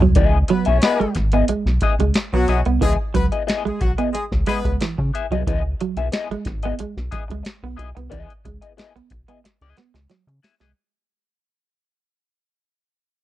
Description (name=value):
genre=funk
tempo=91 BPM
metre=4/4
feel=straight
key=C# minor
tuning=A4 = 439 Hz
part: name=electric guitar at the edge of break-up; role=accompaniment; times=0.0-10.7 s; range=B3 to E5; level=-24 LUFS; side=left 7 dB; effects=wah
part: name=semi-hollow electric guitar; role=riff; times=0.0-10.7 s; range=E3 to B3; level=-23 LUFS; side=right 6 dB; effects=wide subtle chorus
part: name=rubbery square bass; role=bass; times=0.0-10.7 s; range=G#1 to C#3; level=-21 LUFS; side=equal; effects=none
part: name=booming analog drum machine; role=drums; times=0.2-10.7 s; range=hi-hat, kick drum, snare drum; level=-23 LUFS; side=equal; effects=none
part: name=clear horn section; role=second line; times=0.5-4.7 s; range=F#3 to C#5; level=-25 LUFS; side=left 3 dB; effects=none
room=digital ambience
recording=dry, close 1970s-style studio recording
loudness=-18 LUFS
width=side -14 dB against mid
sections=0.2-10.8 A section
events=drum fill 0.0, 9.4-10.8; fade-out 0.2-10.8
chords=0.2 C#m9